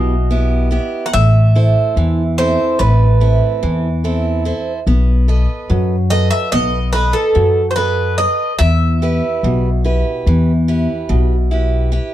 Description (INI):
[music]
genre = greek folk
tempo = 145 BPM (eighths)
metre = 9/8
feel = straight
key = E harmonic minor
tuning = A4 = 438 Hz
[part]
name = Greek bouzouki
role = melody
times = 0.0-9.8 s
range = A4 to F#5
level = -18 LUFS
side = right 1 dB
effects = none
[part]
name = picked steel-string acoustic guitar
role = accompaniment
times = 0.0-12.1 s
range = B2 to D#5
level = -20 LUFS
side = right 3 dB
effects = none
[part]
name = upright bass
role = bass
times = 0.0-12.0 s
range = A1 to F#2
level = -14 LUFS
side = left 1 dB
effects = none
[sound]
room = light reverb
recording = dark, warm production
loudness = -12 LUFS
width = side -13 dB against mid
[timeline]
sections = 0.0-12.1 A section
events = none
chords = 0.0 Em; 1.1 Am; 4.9 B7; 8.6 Em